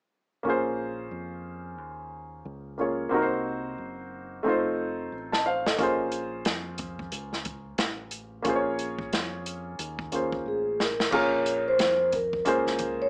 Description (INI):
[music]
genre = hip hop, jazz-hop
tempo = 90 BPM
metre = 4/4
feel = swing 61% on 16ths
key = Bb minor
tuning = A4 = 440 Hz
[part]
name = warm grand piano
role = accompaniment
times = 0.4-13.1 s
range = A3 to A5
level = -30 LUFS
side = equal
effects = none
[part]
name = deep dub fingered electric bass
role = bass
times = 0.4-13.1 s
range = F1 to F2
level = -45 LUFS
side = equal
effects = none
[part]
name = open jazz drum kit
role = drums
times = 5.3-13.0 s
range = crash cymbal, hi-hat, kick drum, snare drum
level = -32 LUFS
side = equal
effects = none
[part]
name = vibraphone with soft mallets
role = melody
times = 10.5-13.1 s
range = Ab4 to Db5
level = -28 LUFS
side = equal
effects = none
[sound]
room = moderate studio reverb, RT60 0.6 s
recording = small speaker sound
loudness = -28 LUFS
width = mono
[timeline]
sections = 0.5-11.1 A section; 11.1-13.1 B section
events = drum fill 5.1-5.8, 10.5-11.1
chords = 0.5 Bbm7; 3.1 Cm7b5; 4.5 F7; 5.8 Bbm7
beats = | 0.46 1.12 1.79 2.46 | 3.12 3.79 4.46 5.12 | 5.79 6.46 7.12 7.79 | 8.46 9.12 9.79 10.46 | 11.12 11.79 12.46